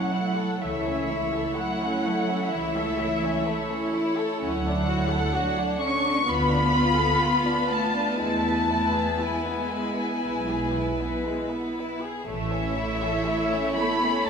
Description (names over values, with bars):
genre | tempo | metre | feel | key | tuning
classical, slow romantic movement for string orchestra | 58-65 BPM | 4/4 | rubato | A major | A4 = 440 Hz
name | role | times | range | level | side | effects
dark studio violin section | melody | 0.0-14.3 s | E5 to C#6 | -27 LUFS | left 2 dB | none
warm studio violin section | second line | 0.0-14.3 s | G#3 to C#5 | -30 LUFS | left 3 dB | none
warm chamber viola section | accompaniment | 0.0-14.3 s | A3 to F4 | -29 LUFS | right 1 dB | none
warm chamber cello section | bass | 0.0-14.3 s | E3 to C#4 | -31 LUFS | right 2 dB | none
warm chamber double bass section | bass | 0.6-14.3 s | E1 to E2 | -32 LUFS | right 1 dB | none
room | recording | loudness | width
wet recital hall reverb, RT60 1.8 s | minimal, uncompressed stereo recording | -23 LUFS | side -6 dB against mid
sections
0.0-14.3 A section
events
none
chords
0.0 A; 0.6 A/C#; 4.4 Dmaj7; 6.3 Bm7b5/D; 8.2 E; 12.3 A